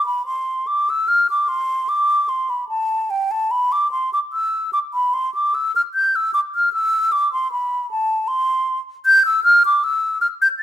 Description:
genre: classical, baroque-style fantasia for unaccompanied flute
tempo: 75 BPM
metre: 3/4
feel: uneven beats, rubato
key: C major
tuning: A4 = 440 Hz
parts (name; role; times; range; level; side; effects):
- mellow hollow concert flute; solo; 0.0-10.6 s; G5 to A6; -16 LUFS; equal; none
room: light reverb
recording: none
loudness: -16 LUFS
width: side -11 dB against mid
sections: 0.0-10.6 A section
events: none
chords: none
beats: 0.26 1.07 | 1.88 2.69 3.50 | 4.33 5.13 5.93 | 6.72 7.50 8.28 | 9.05 9.83 10.60

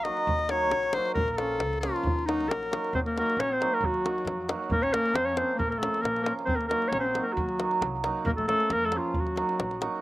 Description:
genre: balkan folk, Balkan wedding band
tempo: 135 BPM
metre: 2/4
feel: straight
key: Eb dorian sharp4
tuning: A4 = 436 Hz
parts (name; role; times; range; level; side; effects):
- bright clarinet; second line; 0.0-9.8 s; F3 to Eb5; -31 LUFS; left 3 dB; none
- hammered dulcimer; accompaniment; 0.0-10.0 s; F3 to Gb4; -32 LUFS; right 4 dB; none
- upright bass; bass; 0.0-9.9 s; Bb1 to F2; -38 LUFS; equal; none
- davul; percussion; 0.0-9.9 s; none; -32 LUFS; left 1 dB; none
- warm clarinet; melody; 2.9-9.8 s; F4 to Db5; -28 LUFS; equal; none
room: little or no reverb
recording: recorded outdoors, with no room sound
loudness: -25 LUFS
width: side -16 dB against mid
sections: 0.0-2.9 A section; 2.9-10.0 B section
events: clarinet solo 0.0-2.9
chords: 0.0 Ebm; 1.2 Bbm; 2.0 Ebm; 4.7 Bbm; 6.5 Ebm; 8.3 Bbm; 9.1 Ebm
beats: | 0.28 0.72 | 1.16 1.60 | 2.05 2.49 | 2.93 3.38 | 3.82 4.26 | 4.70 5.15 | 5.59 6.04 | 6.48 6.92 | 7.37 7.81 | 8.26 8.70 | 9.14 9.59

